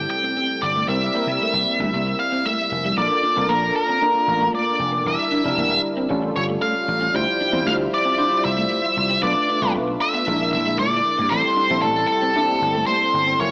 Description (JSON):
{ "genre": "pop", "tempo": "115 BPM", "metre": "4/4", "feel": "straight", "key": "unclear", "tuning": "A4 = 441 Hz", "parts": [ { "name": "octave-fuzz lead guitar", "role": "melody", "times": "0.0-13.5 s", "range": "A4 to G5", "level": "-19 LUFS", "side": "equal", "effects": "distortion, cassette tape" }, { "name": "barky tine electric piano", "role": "accompaniment", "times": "0.0-13.5 s", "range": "C3 to C5", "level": "-24 LUFS", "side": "equal", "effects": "overdrive, analog chorus, cassette tape" }, { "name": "dark studio string section", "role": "sustained chords", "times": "0.0-13.5 s", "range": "Bb2 to E5", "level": "-33 LUFS", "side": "equal", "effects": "cassette tape" }, { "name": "vintage slap bass", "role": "bass", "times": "0.0-13.5 s", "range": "E1 to C3", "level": "-26 LUFS", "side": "equal", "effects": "none" }, { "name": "electric guitar at the edge of break-up", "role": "riff", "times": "0.2-13.4 s", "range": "G3 to D4", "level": "-29 LUFS", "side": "right 1 dB", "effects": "ensemble chorus, cassette tape" } ], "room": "moderate lush hall reverb, RT60 2.3 s", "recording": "home recording on cassette, small speaker sound", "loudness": "-17 LUFS", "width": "side -27 dB against mid", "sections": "0.0-3.0 A section; 3.0-13.5 B section", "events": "none", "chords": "0.0 Am7; 0.9 C7; 3.0 Bbmaj7; 5.1 Em7b5; 6.1 A7b13; 7.1 Dm11; 9.2 Bm7b5; 10.3 Bb7#11; 11.3 Am7" }